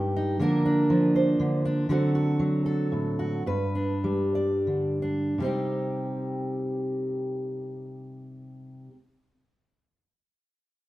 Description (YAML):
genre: folk, solo fingerstyle acoustic guitar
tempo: 80-121 BPM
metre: 3/4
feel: straight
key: C minor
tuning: A4 = 440 Hz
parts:
  - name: fingerpicked steel-string acoustic guitar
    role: solo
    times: 0.0-9.0 s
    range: G2 to D5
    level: -24 LUFS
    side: equal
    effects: none
room: wet stone room reverb, RT60 1.2 s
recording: band playing live in one room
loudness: -24 LUFS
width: side -16 dB against mid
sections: 0.0-5.4 A section; 5.4-9.9 B section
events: slowing down 1.9-5.4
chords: 0.4 Bb/D; 1.9 D7; 3.4 G; 5.4 Cm